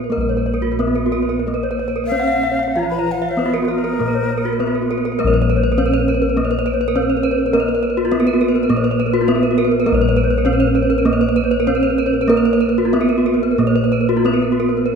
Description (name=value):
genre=Balinese gamelan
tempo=87-103 BPM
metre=4/4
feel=straight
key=Bb pelog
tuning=A4 = 441 Hz
part: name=gamelan-type bronze metallophone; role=melody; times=0.0-14.9 s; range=Bb3 to F4-45c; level=-19 LUFS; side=right 2 dB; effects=none
part: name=gamelan-type bronze metallophone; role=accompaniment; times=0.0-14.9 s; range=F3-45c to Bb3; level=-26 LUFS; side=right 9 dB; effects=none
part: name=gamelan-type bronze metallophone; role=arpeggios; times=0.0-14.9 s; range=Gb4-40c to Gb5-40c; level=-21 LUFS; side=left 5 dB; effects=none
part: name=gamelan-type bronze metallophone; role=arpeggios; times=0.0-14.9 s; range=F4-45c to Gb5-40c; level=-22 LUFS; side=right 4 dB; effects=none
part: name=gamelan-type bossed gongs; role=bass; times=0.0-15.0 s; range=Bb1 to Bb4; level=-22 LUFS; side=left 2 dB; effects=none
part: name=breathy jazz flute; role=second line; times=2.1-4.9 s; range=Bb4 to Cb6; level=-23 LUFS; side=left 5 dB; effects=none
room=moderate scoring stage reverb, RT60 1.9 s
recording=minimal, uncompressed stereo recording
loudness=-14 LUFS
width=side -6 dB against mid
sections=0.0-5.2 A section; 5.2-14.9 B section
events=none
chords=none